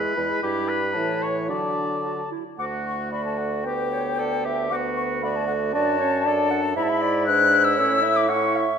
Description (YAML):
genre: quick classical-period movement for wind quintet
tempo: 115 BPM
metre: 2/4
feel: rubato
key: D major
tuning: A4 = 440 Hz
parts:
  - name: concert flute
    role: melody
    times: 0.0-8.8 s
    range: F#5 to F#6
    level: -25 LUFS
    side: left 6 dB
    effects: none
  - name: clear oboe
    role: second line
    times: 0.0-8.7 s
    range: C#4 to D5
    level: -29 LUFS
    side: left 2 dB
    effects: none
  - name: clear French horn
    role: accompaniment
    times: 0.0-8.7 s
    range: E3 to E4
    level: -29 LUFS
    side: equal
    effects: none
  - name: mellow clarinet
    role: accompaniment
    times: 0.0-8.8 s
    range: D4 to F#5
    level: -27 LUFS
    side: right 8 dB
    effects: none
  - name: mellow bassoon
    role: bass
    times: 0.0-8.8 s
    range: D2 to D3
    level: -28 LUFS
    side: right 1 dB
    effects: none
room: wet scoring stage reverb, RT60 2.0 s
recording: none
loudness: -20 LUFS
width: side -7 dB against mid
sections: 0.0-2.6 A section; 2.6-8.8 B section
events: none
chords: 0.4 Em/G; 0.9 A; 1.5 D; 3.6 G/D; 4.7 D; 5.7 D/F#; 6.8 E7/G#; 7.8 A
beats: | 0.42 0.95 | 1.49 2.04 | 2.58 3.12 | 3.65 4.18 | 4.71 5.23 | 5.74 6.25 | 6.76 7.27 | 7.78 8.30